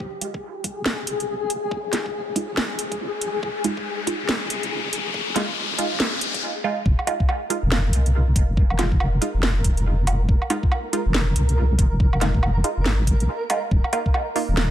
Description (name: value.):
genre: deep dubstep.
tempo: 140 BPM.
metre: 4/4.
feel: swing 61% on 16ths, half-time.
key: F minor.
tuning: A4 = 440 Hz.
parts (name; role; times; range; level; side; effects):
deep soft wobble bass; bass; 0.0-14.7 s; Eb1 to C2; -22 LUFS; equal; chorus, tube saturation, high-pass filter.
electronic kick drum; drums; 0.0-14.1 s; none; -20 LUFS; equal; high-pass filter on kick, small room ambience.
riser; sound effects; 1.2-6.4 s; none; -29 LUFS; left 4 dB; none.
flickering grainy texture; texture; 0.0-14.7 s; Ab4 to Bb4; -31 LUFS; left 2 dB; built-in reverb.
filtered dub chord stab; stabs; 0.2-14.4 s; Ab3 to F4; -28 LUFS; right 3 dB; phaser, cassette tape, dub echo.
garage drum kit; drums; 0.2-14.7 s; hi-hat, snare drum, woodblock; -26 LUFS; right 1 dB; small room ambience.
room: little or no reverb.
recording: dense, heavily limited modern master.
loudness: -20 LUFS.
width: side -12 dB against mid.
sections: 0.0-6.9 A section; 6.9-14.7 B section.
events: build-up 0.0-6.9; filter sweep on synth stab 0.0-6.9; riser 1.2-6.4; break 6.4-6.9; drop 6.9-14.7.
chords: 0.0 Fm; 13.7 Ebsus2.